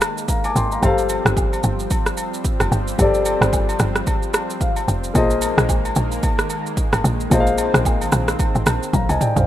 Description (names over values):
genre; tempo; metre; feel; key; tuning
amapiano; 111 BPM; 4/4; swing 58% on 16ths; unclear; A4 = 440 Hz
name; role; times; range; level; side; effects
warm grand piano; accompaniment; 0.0-9.5 s; G3 to D6; -22 LUFS; left 3 dB; none
lush unison pad; sustained chords; 0.0-9.5 s; Eb3 to C4; -28 LUFS; equal; chorus
deep house drum kit; drums; 0.0-9.5 s; kick drum, rim click, shaker, toms; -21 LUFS; right 1 dB; none
agogo bells and woodblock; percussion; 0.0-9.2 s; none; -29 LUFS; left 1 dB; none
tight log drum bass; bass; 0.6-9.5 s; F1 to C2; -20 LUFS; equal; none
room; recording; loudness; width
light reverb; rough home demo mix; -16 LUFS; side -12 dB against mid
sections
0.0-9.5 A section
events
grand piano fill 4.3-5.2; drum fill 8.9-9.5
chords
0.0 Bb9sus4; 0.8 G9sus4; 5.2 Bb9sus4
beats
0.29 | 0.83 1.37 1.91 2.45 | 2.99 3.53 4.07 4.61 | 5.15 5.69 6.23 6.77 | 7.31 7.85 8.39 8.94